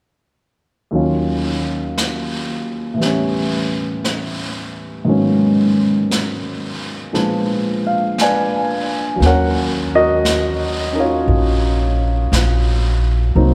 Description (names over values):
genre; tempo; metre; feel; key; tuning
jazz ballad; 58 BPM; 4/4; swing 67% on 8ths; Eb minor; A4 = 439 Hz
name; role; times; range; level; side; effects
warm grand piano; accompaniment; 0.9-13.5 s; Eb2 to Ab5; -20 LUFS; equal; none
jazz brush drum kit; drums; 0.9-13.5 s; brushed snare drum, hi-hat, snare drum; -28 LUFS; equal; none
upright bass; bass; 9.2-13.5 s; Bb1 to Eb2; -19 LUFS; equal; none
room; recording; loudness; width
wet cathedral reverb, RT60 4.6 s; recorded in a church or concert hall; -18 LUFS; mono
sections
0.9-9.2 A section; 9.2-13.5 B section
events
none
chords
0.9 Ebm9; 3.0 A9; 5.1 Abm11; 7.1 Bb7b9; 9.2 Ebm9